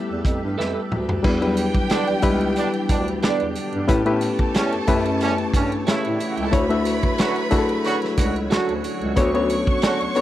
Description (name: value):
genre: lush 1970s-style soul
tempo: 91 BPM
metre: 4/4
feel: swing 54% on 16ths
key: E dorian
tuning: A4 = 440 Hz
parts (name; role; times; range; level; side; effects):
- barky reed electric piano; accompaniment; 0.0-10.2 s; F#3 to E5; -23 LUFS; left 3 dB; overdrive
- soft string machine; sustained chords; 0.0-10.2 s; E3 to E5; -31 LUFS; right 1 dB; ensemble chorus
- mellow bass clarinet; bass; 0.1-10.2 s; C#2 to A2; -26 LUFS; equal; none
- vintage drum kit; drums; 0.2-10.2 s; crash cymbal, hi-hat, kick drum, snare drum, toms; -22 LUFS; equal; none
- electric guitar through a small old amp; riff; 0.6-10.0 s; D4 to E5; -26 LUFS; right 6 dB; ensemble chorus
- warm studio violin section; second line; 1.2-10.2 s; C#4 to C#6; -29 LUFS; right 1 dB; none
- triangle; percussion; 1.2-10.2 s; none; -40 LUFS; right 8 dB; none
- mellow horn section; stabs; 1.9-10.0 s; A2 to F#4; -26 LUFS; right 3 dB; none
room: little or no reverb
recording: dry, close 1970s-style studio recording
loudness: -18 LUFS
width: side -13 dB against mid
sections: 0.0-1.2 A section; 1.2-10.2 B section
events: reed electric piano solo 0.0-1.2; drum fill 0.6-1.2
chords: 0.0 Fmaj9#11; 1.2 Em7; 3.9 A7; 6.5 Dmaj7; 9.2 Bm9/D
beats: 0.58 | 1.24 1.91 2.56 3.23 | 3.89 4.55 5.21 5.87 | 6.53 7.19 7.85 8.51 | 9.17 9.83